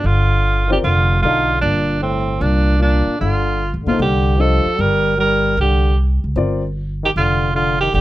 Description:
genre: jazz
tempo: 152 BPM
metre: 4/4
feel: swing 67% on 8ths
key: C dorian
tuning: A4 = 441 Hz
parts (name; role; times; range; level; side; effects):
- clear tenor saxophone; melody; 0.0-8.0 s; C4 to Bb4; -18 LUFS; right 2 dB; plate reverb
- warm trombone; second line; 0.0-8.0 s; A2 to G3; -23 LUFS; left 3 dB; none
- upright bass; bass; 0.0-8.0 s; F1 to Db2; -17 LUFS; equal; none
- warm upright piano; accompaniment; 0.7-1.5, 3.9-6.6 s; Bb3 to F5; -20 LUFS; left 3 dB; none
room: light reverb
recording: none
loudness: -14 LUFS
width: side -16 dB against mid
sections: 0.0-8.0 A section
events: none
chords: 0.0 C9sus4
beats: 0.05 0.45 | 0.84 1.24 1.63 2.03 | 2.42 2.82 3.21 3.61 | 4.00 4.40 4.79 5.19 | 5.59 5.98 6.38 6.77 | 7.17 7.57 7.96

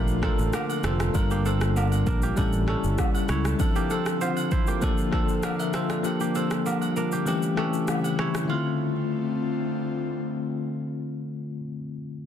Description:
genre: afrobeats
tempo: 98 BPM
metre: 4/4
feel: straight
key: D minor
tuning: A4 = 440 Hz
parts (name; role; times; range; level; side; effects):
- bell-like tine electric piano; accompaniment; 0.0-12.3 s; D3 to F5; -28 LUFS; left 5 dB; fast stereo tremolo
- airy breathy pad; sustained chords; 0.0-11.6 s; C#3 to A4; -32 LUFS; right 1 dB; chorus
- kora; riff; 0.0-10.3 s; Bb3 to C#5; -32 LUFS; right 6 dB; digital delay
- fingered electric bass; bass; 0.0-3.5 s; F1 to C#2; -25 LUFS; equal; none
- afro-pop drum kit; drums; 0.1-8.5 s; kick drum, rim click, shaker; -28 LUFS; equal; soft clipping on snare
- agogo bells and woodblock; percussion; 0.2-8.8 s; none; -36 LUFS; right 4 dB; none
room: digital ambience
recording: dense, heavily limited modern master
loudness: -23 LUFS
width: side -9 dB against mid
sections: 0.0-8.5 A section; 8.5-10.9 B section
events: none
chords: 0.0 Bbmaj7; 1.1 Gm7; 2.4 A7; 3.6 Dm7; 4.8 Bbmaj7; 6.0 Gm7; 7.3 A7; 8.5 Dm7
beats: 0.54 | 1.15 1.76 2.37 2.98 | 3.60 4.21 4.82 5.43 | 6.05 6.66 7.27 7.88 | 8.49 9.11 9.72 10.33

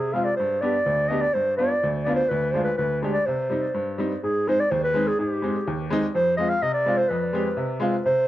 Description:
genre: klezmer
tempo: 125 BPM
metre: 2/4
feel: straight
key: unclear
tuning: A4 = 439 Hz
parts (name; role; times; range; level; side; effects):
- dark clarinet; melody; 0.0-8.3 s; G4 to F5; -23 LUFS; equal; tape echo
- clear upright piano; accompaniment; 0.0-8.3 s; D2 to G4; -25 LUFS; equal; none
room: light reverb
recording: dark, warm production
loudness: -21 LUFS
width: side -14 dB against mid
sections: 0.0-4.2 A section; 4.2-8.3 B section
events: none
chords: 0.4 G; 2.3 Ddim; 3.3 Cm; 4.2 Ab; 6.1 Fm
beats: | 0.39 0.87 | 1.35 1.83 | 2.31 2.79 | 3.27 3.75 | 4.23 4.71 | 5.19 5.67 | 6.15 6.62 | 7.10 7.58 | 8.06

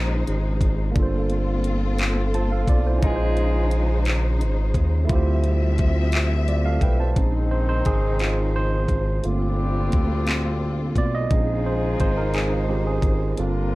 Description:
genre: slow six-eight R&B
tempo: 58 BPM (dotted quarters)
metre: 6/8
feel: straight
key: unclear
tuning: A4 = 440 Hz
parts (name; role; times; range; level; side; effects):
- barky tine electric piano; accompaniment; 0.0-13.8 s; Ab3 to A5; -27 LUFS; right 3 dB; overdrive
- warm symphonic string section; sustained chords; 0.0-13.8 s; Bb2 to E5; -30 LUFS; left 2 dB; none
- smooth synth bass; bass; 0.0-13.8 s; G1 to Eb2; -22 LUFS; equal; none
- smooth R&B drum kit; drums; 0.3-13.5 s; handclaps, hi-hat, kick drum; -22 LUFS; equal; none
- mellow horn section; stabs; 3.0-4.0, 7.2-13.8 s; Eb3 to Bb4; -30 LUFS; left 2 dB; slapback echo
room: light reverb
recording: dark, warm production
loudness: -19 LUFS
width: side -19 dB against mid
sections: 0.0-7.2 A section; 7.2-13.8 B section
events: tine electric piano solo 7.2-13.8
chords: 0.0 Bbm11; 1.0 Gm11; 3.0 Bbm11; 5.1 Dm11; 7.2 Bbm11; 9.2 Gm11; 11.3 Bbm11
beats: | 0.96 2.00 | 3.03 4.07 | 5.10 6.13 | 7.17 8.20 | 9.24 10.27 | 11.31 12.34 | 13.38

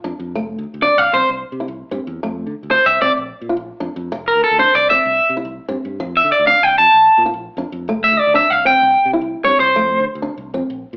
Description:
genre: highlife guitar band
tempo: 128 BPM (dotted quarters)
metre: 12/8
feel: straight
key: F major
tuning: A4 = 440 Hz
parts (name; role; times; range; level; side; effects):
- fingerpicked steel-string acoustic guitar; accompaniment; 0.0-10.8 s; F3 to F4; -23 LUFS; equal; none
- fingered electric bass; bass; 0.0-11.0 s; F1 to D3; -29 LUFS; equal; none
- electric guitar at the edge of break-up; melody; 0.8-10.0 s; A4 to A5; -11 LUFS; equal; none
room: moderate large studio reverb, RT60 0.9 s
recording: band playing live in one room, AM radio sound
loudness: -12 LUFS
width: side -33 dB against mid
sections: 0.0-11.0 A section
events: clean electric guitar solo 0.0-11.0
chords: 0.4 F; 1.3 C; 2.2 F; 3.2 Bb; 4.1 F5; 5.1 C; 6.0 F5; 6.9 Bb; 7.9 F; 8.8 C; 9.8 F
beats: | 0.36 0.83 1.30 1.77 | 2.24 2.71 3.18 3.65 | 4.12 4.59 5.06 5.53 | 6.00 6.47 6.94 7.41 | 7.88 8.35 8.82 9.29 | 9.77 10.23 10.71

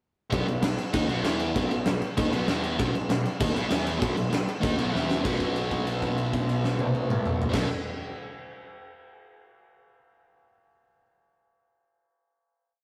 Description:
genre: punk rock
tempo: 195 BPM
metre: 4/4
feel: straight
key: B major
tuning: A4 = 436 Hz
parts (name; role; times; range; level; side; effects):
- sludgy distorted guitar; riff; 0.3-7.7 s; B2 to E4; -31 LUFS; equal; overdrive
- fuzz picked electric bass; bass; 0.3-7.7 s; B1 to E2; -35 LUFS; equal; overdrive
- big rock drum kit; drums; 0.3-7.6 s; crash cymbal, kick drum, snare drum, toms; -30 LUFS; equal; none
room: light reverb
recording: rough rehearsal-room recording, warm saturation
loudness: -27 LUFS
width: mono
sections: 0.3-5.2 riff; 5.2-7.7 final chord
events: drum fill 4.9-5.2; held note 5.2-7.5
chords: 0.3 B; 1.2 E5; 1.6 B; 2.5 E5; 2.8 B; 3.7 E5; 4.0 B; 4.9 E5; 5.2 B5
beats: | 0.32 0.63 0.94 1.25 | 1.55 1.86 2.17 2.48 | 2.78 3.09 3.40 3.71 | 4.01 4.32 4.63 4.93 | 5.24 5.55 5.86 6.17 | 6.47 6.78 7.09 7.40

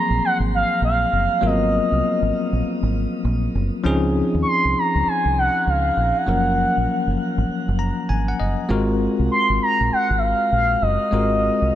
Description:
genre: R&B, new jack swing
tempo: 99 BPM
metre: 4/4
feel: swing 63% on 16ths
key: unclear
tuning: A4 = 440 Hz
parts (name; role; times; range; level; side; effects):
- expressive portamento lead; melody; 0.0-11.8 s; Eb5 to Db6; -20 LUFS; equal; chorus, shimmer reverb
- bell-like tine electric piano; accompaniment; 0.0-11.8 s; F3 to Bb5; -22 LUFS; left 2 dB; fast stereo tremolo, shimmer reverb
- deep dub fingered electric bass; bass; 0.1-11.7 s; Gb1 to Eb2; -22 LUFS; right 1 dB; none
room: light reverb, digital ambience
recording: none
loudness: -17 LUFS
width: side -12 dB against mid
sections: 0.0-11.8 A section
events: tine electric piano fill 7.5-8.7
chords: 0.0 Ab13; 3.9 Dbmaj9; 6.3 Gbmaj7; 8.7 Ab13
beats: 0.21 0.82 | 1.43 2.03 2.64 3.25 | 3.85 4.46 5.06 5.67 | 6.28 6.88 7.49 8.09 | 8.70 9.30 9.91 10.52 | 11.12 11.73

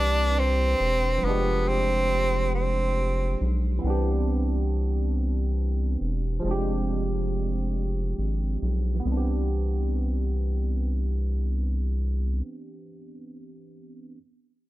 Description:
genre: slow six-eight R&B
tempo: 46 BPM (dotted quarters)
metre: 6/8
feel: straight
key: C major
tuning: A4 = 440 Hz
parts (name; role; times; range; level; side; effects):
- breathy tenor saxophone; melody; 0.0-3.5 s; B3 to D4; -25 LUFS; right 1 dB; none
- barky tine electric piano; accompaniment; 0.0-14.2 s; E3 to B4; -31 LUFS; right 2 dB; analog chorus
- round analog bass; bass; 0.0-12.4 s; E1 to C2; -25 LUFS; equal; none
room: small room ambience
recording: low-pass filter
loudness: -23 LUFS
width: side -16 dB against mid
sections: 0.0-3.8 A section; 3.8-9.1 B section; 9.1-11.7 C section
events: filter sweep 3.8-9.1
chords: 0.0 Cmaj9; 1.2 Fm6; 3.8 Cmaj9; 6.4 Fm6; 9.1 Cmaj9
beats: | 1.23 2.53 | 3.83 5.14 | 6.44 7.75 | 9.05 10.36

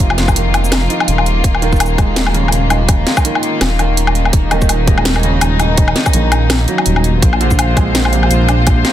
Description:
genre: half-time drum and bass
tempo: 166 BPM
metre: 4/4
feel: swing 57% on 16ths, half-time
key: unclear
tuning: A4 = 440 Hz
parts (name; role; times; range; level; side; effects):
- warm studio string section; sustained chords; 0.0-8.9 s; Eb3 to C5; -19 LUFS; left 2 dB; sidechain pumping
- felt-muted upright piano; arpeggios; 0.0-8.9 s; C3 to Eb4; -20 LUFS; right 5 dB; digital delay
- dark detuned saw bass; bass; 0.0-8.8 s; Eb1 to Bb1; -14 LUFS; equal; none
- drum and bass drum kit; drums; 0.0-8.9 s; hi-hat, shaker, snare drum, woodblock; -17 LUFS; left 2 dB; overdrive
- electronic kick drum; drums; 0.0-8.8 s; none; -13 LUFS; equal; overdrive
room: light reverb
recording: dense, heavily limited modern master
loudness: -11 LUFS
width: side -12 dB against mid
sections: 0.0-8.9 A section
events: none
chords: 0.0 Fm; 1.4 Eb5; 7.2 Bb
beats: | 0.00 0.36 0.72 1.08 | 1.44 1.80 2.16 2.53 | 2.89 3.25 3.61 3.97 | 4.33 4.70 5.06 5.42 | 5.78 6.14 6.50 6.86 | 7.22 7.59 7.95 8.31 | 8.67

